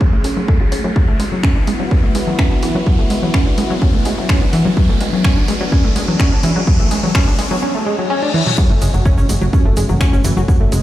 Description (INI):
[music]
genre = melodic techno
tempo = 126 BPM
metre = 4/4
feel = straight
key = unclear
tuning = A4 = 440 Hz
[part]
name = dark analog pad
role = sustained chords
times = 0.0-10.8 s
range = A3 to G#4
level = -25 LUFS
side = equal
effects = chorus, sidechain pumping
[part]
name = tight sequenced synth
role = arpeggios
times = 0.0-10.8 s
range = E3 to A4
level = -19 LUFS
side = equal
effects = chorus, phaser, cassette tape, sidechain pumping, dub echo
[part]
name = electronic kick drum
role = drums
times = 0.0-10.6 s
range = none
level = -14 LUFS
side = equal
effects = overdrive, studio reverb
[part]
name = riser, reverse cymbal and impact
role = sound effects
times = 0.0-10.5 s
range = none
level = -25 LUFS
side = left 1 dB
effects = none
[part]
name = tight sequencer bass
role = bass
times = 0.1-10.8 s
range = F#1 to F#2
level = -21 LUFS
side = equal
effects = sidechain pumping, high-pass filter
[part]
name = techno drum kit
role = drums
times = 0.2-10.8 s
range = crash cymbal, finger snaps, hi-hat, toms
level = -24 LUFS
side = equal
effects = overdrive, studio reverb
[part]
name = egg shaker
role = percussion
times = 8.6-10.8 s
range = none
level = -31 LUFS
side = right 4 dB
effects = none
[sound]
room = light reverb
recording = played on a big sound system in a bare room, stone room reverb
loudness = -12 LUFS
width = side -14 dB against mid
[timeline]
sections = 0.0-8.6 A section; 8.6-10.8 B section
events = build-up 0.0-8.6; riser 0.0-7.6; filter sweep on synth arpeggio sound 0.0-8.6; reverse cymbal 7.6-8.6; drum fill 8.2-8.6; drop 8.6-10.8; impact 8.6-10.5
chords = 0.0 F#m; 1.0 Esus2/F#; 8.6 F#m